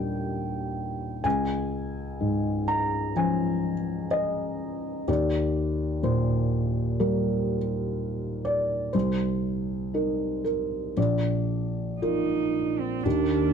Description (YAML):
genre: neoclassical piano and strings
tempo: 57-64 BPM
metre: 4/4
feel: rubato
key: Eb major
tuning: A4 = 435 Hz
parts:
  - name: felt-muted upright piano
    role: accompaniment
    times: 0.0-13.5 s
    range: Bb1 to Bb5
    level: -25 LUFS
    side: left 1 dB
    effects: none
  - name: muted cello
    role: second line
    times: 12.0-13.5 s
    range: C4 to Eb4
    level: -26 LUFS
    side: right 11 dB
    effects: none
  - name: muted double bass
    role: bass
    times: 13.0-13.5 s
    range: Eb2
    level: -32 LUFS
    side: left 1 dB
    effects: none
  - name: hollow soft pad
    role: sustained chords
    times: 13.2-13.5 s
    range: D4 to Bb4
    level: -31 LUFS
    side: right 2 dB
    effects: ensemble chorus
room: light reverb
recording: dark, warm production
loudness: -25 LUFS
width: side -7 dB against mid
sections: 0.0-13.0 A section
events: none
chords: 0.0 Ebmaj7; 1.2 Dbmaj7; 5.1 Ebmaj7; 8.9 Cm7; 11.0 Bb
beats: 0.27 | 1.25 2.21 3.16 4.11 | 5.08 6.04 7.00 7.97 | 8.94 9.94 10.97 12.02 | 13.05